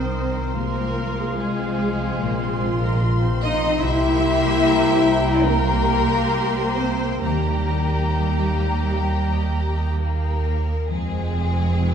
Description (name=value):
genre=cinematic, emotional film score for orchestra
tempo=64-74 BPM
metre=4/4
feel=rubato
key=F minor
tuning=A4 = 436 Hz
part: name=rich studio violin section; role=melody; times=0.0-11.9 s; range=Ab4 to C6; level=-34 LUFS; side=left 4 dB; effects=none
part: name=rich studio violin section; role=second line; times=0.0-11.9 s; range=Ab3 to E5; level=-28 LUFS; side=left 4 dB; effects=none
part: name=small flute group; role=second line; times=0.0-10.5 s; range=Bb5 to Eb6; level=-31 LUFS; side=equal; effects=none
part: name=warm cor anglais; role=second line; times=0.0-10.5 s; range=Bb4 to G5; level=-33 LUFS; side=left 1 dB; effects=none
part: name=rich studio viola section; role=accompaniment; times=0.0-11.9 s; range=Eb3 to Bb4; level=-29 LUFS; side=right 3 dB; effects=none
part: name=mellow French horn section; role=sustained chords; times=0.0-11.9 s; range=G3 to E4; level=-26 LUFS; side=left 3 dB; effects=none
part: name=concert harp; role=arpeggios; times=0.0-11.9 s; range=Bb2 to Bb5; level=-28 LUFS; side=left 6 dB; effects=none
part: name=rich studio cello section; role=bass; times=0.0-11.9 s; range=F2 to E4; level=-28 LUFS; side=right 2 dB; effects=none
part: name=warm studio double bass section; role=bass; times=0.0-11.9 s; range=F1 to Eb2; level=-23 LUFS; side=right 2 dB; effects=none
room=wet scoring stage reverb, RT60 1.7 s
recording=minimal, uncompressed stereo recording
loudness=-18 LUFS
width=side -7 dB against mid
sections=0.0-10.9 A section; 10.9-11.9 B section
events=none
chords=0.0 Cm7; 0.6 Fm/C; 2.2 Bbsus2; 3.8 C7; 7.2 Eb; 10.9 Fm